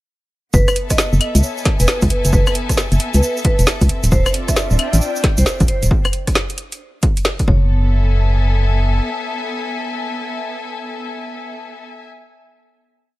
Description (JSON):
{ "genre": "UK garage, two-step garage", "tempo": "134 BPM", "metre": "4/4", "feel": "swing 64% on 16ths", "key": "unclear", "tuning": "A4 = 439 Hz", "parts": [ { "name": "vibraphone with medium mallets", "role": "melody", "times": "0.5-11.7 s", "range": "B4 to E5", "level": "-25 LUFS", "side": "equal", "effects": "digital delay" }, { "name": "organ-like FM bass", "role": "bass", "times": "0.5-9.0 s", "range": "D1 to C#2", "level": "-14 LUFS", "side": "equal", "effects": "none" }, { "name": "electronic kick drum", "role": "drums", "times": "0.5-7.6 s", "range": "none", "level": "-17 LUFS", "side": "equal", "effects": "none" }, { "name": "tube shaker", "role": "percussion", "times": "0.5-5.9 s", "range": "none", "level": "-27 LUFS", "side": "right 3 dB", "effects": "none" }, { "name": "rich studio string section", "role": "texture", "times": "0.5-12.0 s", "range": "B3 to G#5", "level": "-26 LUFS", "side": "left 2 dB", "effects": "sidechain pumping" }, { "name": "garage drum kit", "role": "drums", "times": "0.7-7.5 s", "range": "claves, hi-hat, rim click, snare drum", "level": "-20 LUFS", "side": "equal", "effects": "overdrive" }, { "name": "soft string machine", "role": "sustained chords", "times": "4.1-5.9 s", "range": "D4 to D5", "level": "-31 LUFS", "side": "right 2 dB", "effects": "phaser, ensemble chorus, sidechain pumping" } ], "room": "little or no reverb", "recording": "lossy compression artefacts", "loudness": "-14 LUFS", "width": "side -18 dB against mid", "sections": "0.5-7.7 drop; 7.7-11.3 final chord", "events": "drop 0.5-7.7", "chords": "0.5 F#m11; 3.9 Dm11; 7.5 F#madd11" }